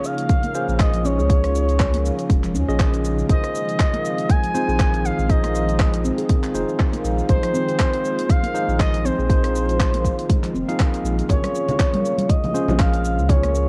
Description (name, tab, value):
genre	afro house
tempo	120 BPM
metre	4/4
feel	swing 56% on 16ths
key	Bb minor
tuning	A4 = 440 Hz
part	expressive synth lead	melody	0.0-13.7 s	C5 to Ab5	-28 LUFS	equal	chorus, cassette tape, analog delay
part	ethereal airy pad	sustained chords	0.0-13.7 s	Db3 to F4	-34 LUFS	equal	none
part	tine electric piano	stabs	0.0-13.7 s	Db4 to F5	-30 LUFS	equal	vintage 12-bit sampler grit, sidechain pumping, cassette tape, analog delay
part	house drum kit	drums	0.0-13.7 s	handclaps, hi-hat, rim click, shaker	-33 LUFS	equal	cassette tape
part	electronic kick drum	drums	0.3-13.4 s	none	-21 LUFS	equal	cassette tape
part	handpan	arpeggios	0.4-13.5 s	F3 to Ab4	-30 LUFS	equal	sidechain pumping, cassette tape, analog delay
part	round analog bass	bass	0.7-13.7 s	F1 to Eb2	-25 LUFS	equal	sidechain pumping
part	congas	percussion	11.3-13.4 s	none	-28 LUFS	equal	none
room	digital ambience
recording	home recording on cassette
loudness	-20 LUFS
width	mono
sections	0.0-13.7 A section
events	none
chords	0.0 Bbm7; 3.3 Fm7; 11.3 Bbm7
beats	0.29 0.80 | 1.29 1.79 2.29 2.79 | 3.29 3.79 4.29 4.79 | 5.29 5.79 6.29 6.79 | 7.29 7.79 8.29 8.79 | 9.29 9.79 10.29 10.79 | 11.29 11.79 12.29 12.79 | 13.29